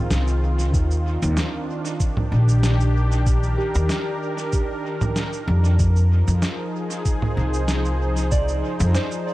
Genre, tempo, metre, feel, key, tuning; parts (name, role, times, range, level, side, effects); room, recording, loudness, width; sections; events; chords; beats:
ambient dub; 95 BPM; 4/4; swing 53% on 16ths; A4 = 441 Hz
warm analog pad; sustained chords; 0.0-9.3 s; Eb3 to C5; -27 LUFS; equal; chorus
upright bass; bass; 0.1-8.9 s; Bb1 to F2; -19 LUFS; equal
electronic snare drum, cabasa and congas; drums; 0.1-9.2 s; -27 LUFS; right 1 dB; dub echo
electronic kick drum; drums; 0.7-8.5 s; -22 LUFS; equal
soft synth bell; arpeggios; 3.6-9.3 s; G4 to D5; -31 LUFS; right 3 dB; chorus, tape echo
digital ambience; -19 LUFS; side -17 dB against mid
0.0-9.3 A section
0.0 Fm7; 0.7 Ebmaj7; 5.8 Fm7
0.11 | 0.74 1.37 2.00 2.63 | 3.27 3.90 4.53 5.16 | 5.79 6.42 7.05 7.69 | 8.32 8.95